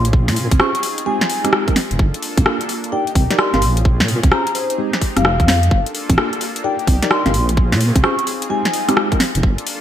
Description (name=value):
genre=UK garage, two-step garage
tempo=129 BPM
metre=4/4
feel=swing 65% on 16ths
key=unclear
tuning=A4 = 438 Hz
part: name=warm analog pad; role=sustained chords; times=0.0-9.8 s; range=Bb3 to A4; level=-28 LUFS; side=equal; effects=chorus, tremolo, sidechain pumping
part: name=deep soft wobble bass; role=bass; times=0.0-9.6 s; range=F1 to Bb2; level=-17 LUFS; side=equal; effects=chorus
part: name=garage drum kit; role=drums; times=0.0-9.8 s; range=congas, hi-hat, rim click, snare drum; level=-18 LUFS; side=equal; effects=gated reverb
part: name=electronic kick drum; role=drums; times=0.1-9.6 s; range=none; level=-16 LUFS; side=equal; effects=none
part: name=vibraphone with soft mallets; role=melody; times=0.6-9.0 s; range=C5 to Db6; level=-23 LUFS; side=left 2 dB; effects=none
part: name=tine electric piano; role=stabs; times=0.6-9.2 s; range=Ab3 to F5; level=-24 LUFS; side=equal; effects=overdrive, medium stereo tremolo, ping-pong delay
room=light reverb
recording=bright 1980s-style digital production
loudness=-14 LUFS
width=side -10 dB against mid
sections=0.0-9.8 A section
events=none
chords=0.0 Bbm9; 0.8 Fm9; 2.0 Gm9; 2.9 Cm9; 3.6 Bbm9; 4.5 Fm9; 5.7 Gm9; 6.6 Cm9; 7.3 Bbm9; 8.3 Fm9